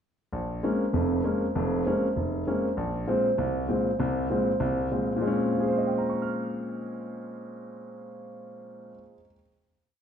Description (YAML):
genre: jazz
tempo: 196 BPM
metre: 4/4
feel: swing 63% on 8ths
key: Bb dorian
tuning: A4 = 439 Hz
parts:
  - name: clear concert grand piano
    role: solo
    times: 0.3-9.5 s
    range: F1 to F6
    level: -26 LUFS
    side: equal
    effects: none
room: wet large studio reverb, RT60 1.3 s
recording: band playing live in one room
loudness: -25 LUFS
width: side -8 dB against mid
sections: 0.3-5.2 A section; 5.2-7.7 final chord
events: none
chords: 0.3 Bbm9; 2.8 Fm/Bb; 5.2 Bbm9